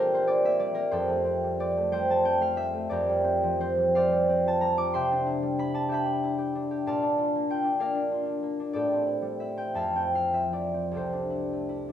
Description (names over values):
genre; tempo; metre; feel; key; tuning
classical, solo harp piece; 50-65 BPM (dotted quarters); 6/8; rubato; unclear; A4 = 440 Hz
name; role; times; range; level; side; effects
concert harp; solo; 0.0-11.9 s; C2 to D6; -24 LUFS; equal; none
room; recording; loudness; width
moderate recital hall reverb, RT60 1.3 s; minimal, uncompressed stereo recording; -24 LUFS; side -10 dB against mid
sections
0.0-11.9 A section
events
none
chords
0.0 Bb69; 0.9 Fadd9; 4.9 Cmaj9; 6.9 Bbmaj7; 8.8 Am7; 9.8 Fmaj7; 10.9 C69